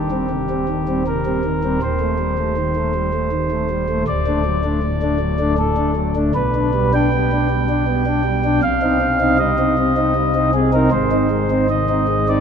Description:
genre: classical, chorale-style piece for pipe organ.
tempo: 79 BPM.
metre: 3/4.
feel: straight.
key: C minor from 6.3 s.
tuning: A4 = 440 Hz.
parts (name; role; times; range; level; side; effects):
chamber organ, principal; solo; 0.0-12.4 s; D1 to G5; -16 LUFS; equal; none.
room: wet cathedral reverb, RT60 5.7 s.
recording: none.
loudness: -16 LUFS.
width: side -7 dB against mid.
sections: 0.0-12.4 A section.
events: none.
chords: 0.0 Cm/Eb; 1.8 Am7b5/Eb; 4.1 D; 6.3 G/B; 8.6 Cm; 10.9 Ab.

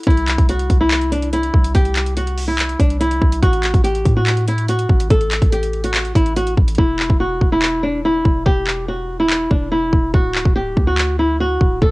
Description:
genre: hip hop, trap.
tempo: 143 BPM.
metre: 4/4.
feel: half-time.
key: unclear.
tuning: A4 = 438 Hz.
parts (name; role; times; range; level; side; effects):
trap drum kit; drums; 0.0-11.9 s; handclaps, hi-hat, kick drum; -16 LUFS; equal; none.
flamenco guitar; melody; 0.1-11.9 s; D4 to A4; -19 LUFS; equal; low-pass filter, cassette tape.
warm 808-style bass; bass; 0.1-11.9 s; D1 to A2; -21 LUFS; equal; none.
room: little or no reverb.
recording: home recording on cassette.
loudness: -14 LUFS.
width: side -22 dB against mid.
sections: 0.0-11.9 A section.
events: hi-hats muted 6.8-11.9.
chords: 0.1 C; 3.4 F#m/A; 6.8 N.C.; 10.1 D.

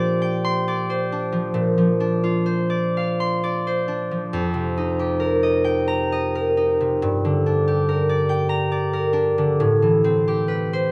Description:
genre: classical, solo harp piece.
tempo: 64-71 BPM.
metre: 3/4.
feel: rubato.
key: unclear.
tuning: A4 = 435 Hz.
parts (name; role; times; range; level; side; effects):
concert harp; solo; 0.0-10.9 s; F2 to C6; -21 LUFS; equal; none.
room: moderate recital hall reverb, RT60 1.4 s.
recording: nothing above 10.8 kHz.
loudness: -21 LUFS.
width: mono.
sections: 0.0-10.9 A section.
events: none.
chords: 0.0 Bb69; 1.5 Dm7/Bb; 4.3 F9sus4; 7.0 Gm7; 9.6 Am9.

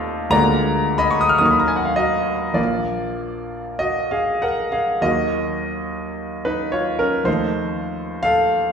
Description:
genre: classical, romantic nocturne for solo piano.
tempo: 48-62 BPM.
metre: 4/4.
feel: rubato.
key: Eb minor.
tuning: A4 = 440 Hz.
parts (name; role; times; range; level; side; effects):
bright baby grand piano; solo; 0.0-8.7 s; Bb1 to F6; -18 LUFS; equal; none.
room: wet recital hall reverb, RT60 1.4 s.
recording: heard from further back in the room.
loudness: -18 LUFS.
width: side -6 dB against mid.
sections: 0.0-8.7 A section.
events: none.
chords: 0.3 Bb7/D; 1.4 Ebm; 2.6 Bb; 5.0 Ebm; 7.3 F7/Eb.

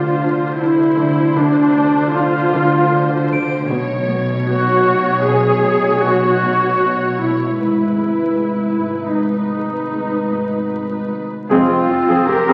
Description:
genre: cinematic, suspense film score.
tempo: 77 BPM.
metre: 5/4.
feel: straight.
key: unclear.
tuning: A4 = 440 Hz.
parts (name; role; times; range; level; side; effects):
muted symphonic violin section; melody; 0.0-12.5 s; Cb5 to C#5; -27 LUFS; equal; none.
muted studio viola section; accompaniment; 0.0-12.5 s; C4 to Ab4; -19 LUFS; equal; none.
muted symphonic cello section; riff; 0.0-12.5 s; F2 to D4; -27 LUFS; equal; none.
muted studio double bass section; bass; 0.0-12.5 s; Ab1 to F2; -26 LUFS; equal; none.
muted symphonic cello section; bass; 0.0-12.5 s; Ab2 to Bb4; -26 LUFS; equal; none.
saturated sub bass; drone; 0.0-12.5 s; F1; -36 LUFS; equal; none.
large celesta; texture; 3.3-7.6 s; D7; -31 LUFS; equal; none.
warm clarinet; second line; 11.5-12.5 s; C4 to G4; -20 LUFS; equal; none.
mellow French horn section; sustained chords; 11.5-11.8 s; Ab3 to C4; -27 LUFS; equal; none.
room: wet scoring stage reverb, RT60 1.6 s.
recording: very old 78 rpm record, vinyl crackle.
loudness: -16 LUFS.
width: mono.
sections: 0.0-11.5 A section; 11.5-12.5 B section.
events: none.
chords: 0.0 Dm7/F; 3.7 Bmadd9; 7.6 Abm; 11.5 Fm.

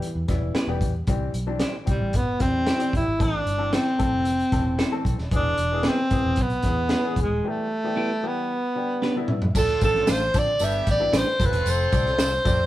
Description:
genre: uptempo 1960s-style soul.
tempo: 113 BPM.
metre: 4/4.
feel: straight.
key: unclear.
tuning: A4 = 439 Hz.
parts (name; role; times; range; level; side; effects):
breathy alto saxophone; melody; 0.0-12.7 s; E3 to E5; -24 LUFS; equal; none.
clear upright piano; accompaniment; 0.0-12.6 s; D3 to B5; -32 LUFS; left 4 dB; none.
crunchy breakbeat drum kit; drums; 0.0-12.6 s; crash cymbal, hi-hat, kick drum, snare drum, toms; -25 LUFS; equal; none.
vintage muted fingered electric bass; bass; 0.2-12.7 s; Eb1 to D3; -28 LUFS; equal; none.
clean electric guitar; stabs; 0.5-12.3 s; A3 to C5; -30 LUFS; right 2 dB; none.
clear horn section; second line; 9.5-12.4 s; B3 to A4; -33 LUFS; equal; none.
tambourine; percussion; 9.6-12.6 s; none; -38 LUFS; right 6 dB; none.
room: light reverb.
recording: band playing live in one room.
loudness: -21 LUFS.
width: side -14 dB against mid.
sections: 0.0-9.5 A section; 9.5-12.7 B section.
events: break 7.4-9.5; upright piano fill 8.8-9.5; drum fill 9.0-9.5.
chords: 0.0 Em; 1.1 C; 3.2 Am; 5.3 E; 7.4 Em; 8.5 G; 9.5 Dm7; 10.6 Gadd9; 11.4 F.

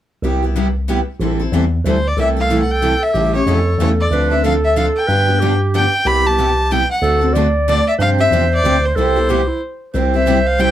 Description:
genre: acoustic string swing (jazz manouche).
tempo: 185 BPM.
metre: 3/4.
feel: swing 59% on 8ths.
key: C major.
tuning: A4 = 440 Hz.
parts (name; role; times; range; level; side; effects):
picked steel-string acoustic guitar; accompaniment; 0.2-10.7 s; C3 to A4; -21 LUFS; left 4 dB; none.
picked steel-string acoustic guitar; accompaniment; 0.2-10.7 s; C3 to A4; -24 LUFS; right 6 dB; none.
bell-like tine electric piano; bass; 0.2-10.7 s; A1 to G2; -18 LUFS; equal; medium stereo tremolo.
warm violin; melody; 1.9-10.7 s; C5 to B5; -18 LUFS; left 1 dB; none.
breathy clarinet; second line; 2.2-10.7 s; E4 to D5; -19 LUFS; right 3 dB; none.
room: light reverb.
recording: none.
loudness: -13 LUFS.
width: side -12 dB against mid.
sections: 0.2-2.2 A section; 2.2-9.9 B section.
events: stop 9.6-9.9.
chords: 0.2 Cmaj7; 1.2 Am7; 2.2 C6; 3.1 A7; 4.1 Dm7; 5.1 G7; 6.1 Cmaj7; 7.0 D7; 8.0 G7sus4; 9.0 Cmaj7; 9.9 C.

